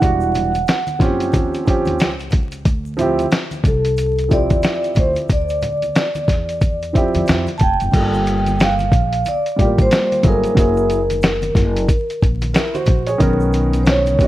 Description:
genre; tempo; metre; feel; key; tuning
hip hop, jazz-hop; 91 BPM; 4/4; swing 60% on 16ths; unclear; A4 = 440 Hz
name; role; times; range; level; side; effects
vibraphone with soft mallets; melody; 0.0-14.3 s; A4 to A5; -20 LUFS; equal; analog delay
dark grand piano; accompaniment; 0.0-14.3 s; D#3 to C#5; -20 LUFS; right 2 dB; none
upright bass; bass; 0.0-14.3 s; E1 to F2; -22 LUFS; equal; none
lo-fi sampler-style drum kit; drums; 0.0-14.3 s; crash cymbal, hi-hat, kick drum, snare drum; -17 LUFS; equal; none
egg shaker and congas; percussion; 0.0-14.3 s; none; -31 LUFS; left 1 dB; none
room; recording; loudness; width
light reverb, studio ambience; vinyl crackle; -14 LUFS; side -15 dB against mid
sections
0.0-7.9 A section; 7.9-14.3 B section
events
none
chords
0.0 Em9; 1.3 Eb13; 2.7 Dm11; 7.9 Gm9; 10.6 F#9; 13.2 Bmaj9

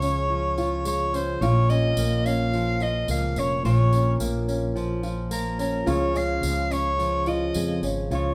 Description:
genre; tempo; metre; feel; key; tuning
acoustic pop; 108 BPM; 4/4; straight; unclear; A4 = 438 Hz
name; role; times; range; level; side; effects
warm soprano saxophone; melody; 0.0-8.3 s; Bb4 to F5; -29 LUFS; equal; none
nylon-string guitar; accompaniment; 0.0-8.3 s; Bb2 to F4; -28 LUFS; equal; none
mellow fretless electric bass; bass; 0.0-8.3 s; F1 to F2; -29 LUFS; equal; none
tambourine; percussion; 0.0-8.2 s; none; -43 LUFS; equal; none
room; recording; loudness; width
wet studio reverb, RT60 0.7 s; band playing live in one room; -24 LUFS; mono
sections
0.0-8.3 A section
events
none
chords
0.0 Db; 1.4 Bbm; 5.9 Db

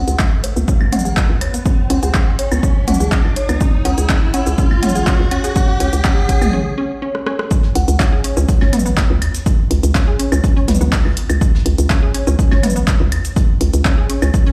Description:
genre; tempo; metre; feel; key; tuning
minimal techno; 123 BPM; 4/4; straight; C# minor; A4 = 440 Hz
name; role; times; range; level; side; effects
glassy synth bell; melody; 0.0-8.0 s; F#5; -30 LUFS; equal; chorus, dub echo
hollow knocking FM bass; bass; 0.0-14.3 s; G#1 to E2; -19 LUFS; equal; sidechain pumping
riser; sound effects; 0.0-6.5 s; none; -28 LUFS; equal; none
resonant blip pluck; riff; 0.1-14.5 s; B3 to C#5; -25 LUFS; equal; chorus, sidechain pumping, dub echo
punchy analog drum machine; drums; 0.1-14.4 s; handclaps, hi-hat, rim click, shaker; -27 LUFS; equal; overdrive
electronic kick drum; drums; 0.2-14.4 s; none; -17 LUFS; equal; overdrive
electronic claves and toms; percussion; 0.8-14.3 s; none; -24 LUFS; equal; overdrive, dub echo
vintage brush drum kit; drums; 7.5-14.5 s; hi-hat, snare drum; -38 LUFS; equal; sidechain pumping on hats, high-pass filter on hats, high-pass filter on snare, high-pass filter on room
room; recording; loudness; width
light reverb; played on a big sound system in a bare room, large studio reverb; -16 LUFS; mono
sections
0.0-7.5 A section; 7.5-14.5 B section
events
build-up 0.0-7.5; riser 0.0-6.5; filter sweep on synth arpeggio sound 0.0-7.5; break 6.5-7.5; drum fill 7.1-7.5; drop 7.5-14.5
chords
0.0 C#5

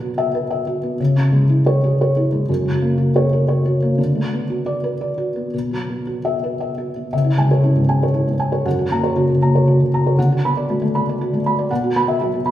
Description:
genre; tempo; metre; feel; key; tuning
neoclassical minimalist piano; 119 BPM; 3/4; rubato; C# dorian; A4 = 435 Hz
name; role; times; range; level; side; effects
felt-muted upright piano; solo; 0.0-12.5 s; F#2 to B5; -16 LUFS; equal; none
room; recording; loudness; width
wet recital hall reverb, RT60 1.4 s; recorded in a church or concert hall; -16 LUFS; side -12 dB against mid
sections
0.0-7.1 A section; 7.1-12.5 A section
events
none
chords
0.0 Bsus4; 1.0 C#m; 2.5 F#; 4.0 D6; 5.5 Bsus4; 7.1 C#m; 8.7 F#; 10.2 D6; 11.7 Bsus4

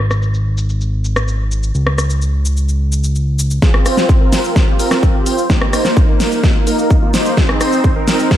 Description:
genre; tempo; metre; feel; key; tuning
EDM, festival progressive house; 128 BPM; 4/4; straight; F minor; A4 = 440 Hz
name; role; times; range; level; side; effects
fat analog bass; bass; 0.0-8.4 s; Eb1 to F2; -18 LUFS; equal; sidechain pumping, high-pass filter
big-room dance drum kit; drums; 0.1-8.4 s; hi-hat, rim click, shaker, snare drum; -19 LUFS; equal; none
supersaw chords; riff; 3.6-8.4 s; Bb3 to C5; -16 LUFS; right 1 dB; sidechain pumping, low-pass filter, tape echo
electronic kick drum; drums; 3.6-8.4 s; none; -12 LUFS; equal; none
room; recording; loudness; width
light reverb; dark, warm production, low-pass filter; -12 LUFS; side -12 dB against mid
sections
0.0-3.6 A section; 3.6-8.4 B section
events
filter sweep 0.0-3.6; build-up 3.6-8.4; drum fill 3.6-8.4; filter sweep on supersaw synth 3.6-8.4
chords
0.0 N.C.; 3.6 F5; 5.5 Eb5; 7.4 Ab

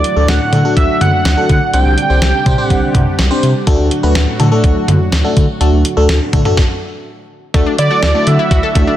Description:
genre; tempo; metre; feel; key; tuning
synth-pop; 124 BPM; 4/4; straight; unclear; A4 = 441 Hz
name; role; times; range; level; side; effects
wide unison lead; melody; 0.0-3.1, 7.8-9.0 s; D5 to G5; -16 LUFS; right 2 dB; tape echo
lush unison pad; sustained chords; 0.0-9.0 s; A2 to G4; -20 LUFS; equal; chorus
round analog bass; bass; 0.0-8.9 s; C2 to D3; -14 LUFS; equal; none
clean 12-bit digital drum machine; drums; 0.0-8.9 s; hi-hat, kick drum, snare drum, toms; -15 LUFS; equal; none
FM electric piano; accompaniment; 0.2-9.0 s; A3 to C5; -17 LUFS; left 1 dB; chorus, phaser
analog pluck; arpeggios; 7.5-8.9 s; A3 to A4; -20 LUFS; left 2 dB; chorus
room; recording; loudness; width
light reverb; dense, heavily limited modern master; -10 LUFS; side -12 dB against mid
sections
0.0-7.5 A section; 7.5-9.0 B section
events
stop 6.6-7.5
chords
0.0 D; 1.7 Csus2; 3.7 D; 7.5 Dadd9

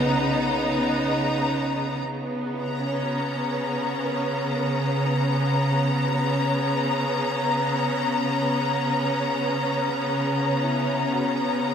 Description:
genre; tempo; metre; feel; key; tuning
ambient; 59 BPM; 4/4; straight; B major; A4 = 440 Hz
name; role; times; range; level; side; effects
bright studio string section; sustained chords; 0.0-11.7 s; C#3 to A#5; -22 LUFS; equal; none
clear symphonic double bass section; bass; 0.0-1.9 s; B1; -46 LUFS; equal; none
felt-muted upright piano; melody; 2.5-11.7 s; E4 to A#4; -42 LUFS; equal; none
room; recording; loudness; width
wet cathedral reverb, RT60 6.4 s; in a vast, echoing space; -22 LUFS; side -7 dB against mid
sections
0.0-2.0 A section; 2.0-11.7 B section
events
none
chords
0.0 Bmaj9; 2.0 Bmaj7sus2

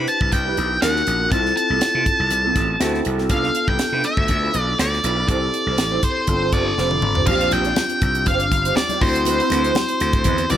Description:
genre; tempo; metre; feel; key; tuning
polished 1980s jazz-funk pop; 121 BPM; 4/4; swing 54% on 16ths; unclear; A4 = 437 Hz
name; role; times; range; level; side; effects
octave-fuzz lead guitar; melody; 0.0-10.6 s; C5 to A5; -21 LUFS; equal; distortion
barky tine electric piano; accompaniment; 0.0-10.6 s; B3 to C5; -25 LUFS; left 2 dB; wide subtle chorus
mellow electric guitar; riff; 0.0-10.5 s; C4 to D5; -27 LUFS; right 6 dB; ensemble chorus
gritty slap bass; bass; 0.0-10.6 s; F1 to C3; -24 LUFS; equal; overdrive
tight funk drum kit; drums; 0.1-10.6 s; crash cymbal, hi-hat, kick drum, snare drum, toms; -23 LUFS; equal; none
congas; percussion; 7.3-10.6 s; none; -31 LUFS; left 8 dB; none
room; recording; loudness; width
light reverb, studio reverb; none; -17 LUFS; side -11 dB against mid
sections
0.0-7.3 A section; 7.3-10.6 B section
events
drum fill 6.8-7.3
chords
0.0 Cmaj7; 0.8 Ebm7; 1.3 Fmaj7; 2.8 D7; 3.3 Dm13; 5.3 C69; 6.3 G7sus4; 7.3 Bb69; 9.0 D13

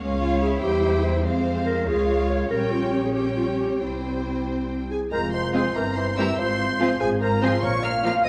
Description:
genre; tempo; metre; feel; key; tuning
quick classical-period movement for symphony orchestra; 96 BPM (dotted quarters); 6/8; straight; F minor; A4 = 438 Hz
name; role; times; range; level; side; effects
warm studio violin section; melody; 0.0-8.3 s; F5 to F6; -34 LUFS; equal; none
warm studio violin section; second line; 0.0-8.1 s; E4 to Db5; -36 LUFS; equal; none
rich studio viola section; accompaniment; 0.0-8.1 s; F3 to Db4; -32 LUFS; equal; none
rich studio double bass section; bass; 0.0-8.3 s; F1 to F2; -31 LUFS; equal; none
warm studio cello section; bass; 0.0-8.3 s; F2 to F4; -31 LUFS; equal; none
mellow clarinet; second line; 0.4-8.3 s; E4 to F5; -29 LUFS; equal; none
silver concert flute; second line; 4.9-8.3 s; Ab4 to F5; -31 LUFS; equal; none
warm oboe; second line; 5.1-8.3 s; A4 to C5; -36 LUFS; equal; none
warm bassoon; accompaniment; 5.1-8.3 s; E3 to Ab3; -34 LUFS; equal; none
dark French horn section; sustained chords; 5.1-8.3 s; Ab3 to F4; -32 LUFS; equal; none
timpani; percussion; 7.6-8.2 s; Bb2; -35 LUFS; equal; none
room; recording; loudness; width
wet scoring stage reverb, RT60 2.1 s; small room ambience; -23 LUFS; mono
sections
0.0-5.1 A section; 5.1-8.3 B section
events
none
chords
0.0 Db; 0.6 C/E; 1.3 Fm; 1.9 Db; 2.5 Gdim/Bb; 3.8 C; 5.1 Fm; 5.8 C7/G; 6.4 Fm/Ab; 7.6 Bb5

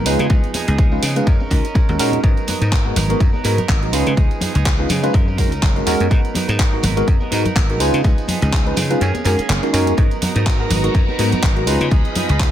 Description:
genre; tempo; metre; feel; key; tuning
filtered disco house; 124 BPM; 4/4; swing 56% on 16ths; G# dorian; A4 = 440 Hz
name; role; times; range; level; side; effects
tine electric piano; accompaniment; 0.0-11.9 s; G#3 to B4; -21 LUFS; equal; phaser, sidechain pumping, low-pass filter
direct-recorded clean electric guitar; riff; 0.0-12.5 s; D#3 to A#4; -25 LUFS; right 4 dB; lush chorus, sidechain pumping, low-pass filter
dry thumbed slap bass; bass; 0.0-12.5 s; F#1 to C#3; -20 LUFS; equal; sidechain pumping, low-pass filter
house drum kit; drums; 0.1-12.5 s; handclaps, hi-hat; -25 LUFS; right 1 dB; sidechain pumping on hats
tambourine and congas; percussion; 0.1-12.5 s; none; -27 LUFS; left 1 dB; sidechain pumping on perc, low-pass filter on perc
electronic kick drum; drums; 0.3-12.5 s; none; -16 LUFS; equal; none
phased string machine; sustained chords; 10.0-12.5 s; B3 to B5; -25 LUFS; equal; ensemble chorus, phaser, vintage 12-bit sampler grit, sidechain pumping, low-pass filter
room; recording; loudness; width
digital ambience; none; -14 LUFS; side -11 dB against mid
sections
0.0-12.5 A section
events
kick drops out 9.0-10.0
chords
0.1 C#9; 1.3 F#69; 2.2 G#m9; 3.9 C#9; 5.1 F#69; 6.1 G#m9; 7.8 C#9; 9.0 F#69; 10.0 G#m9; 11.7 C#9

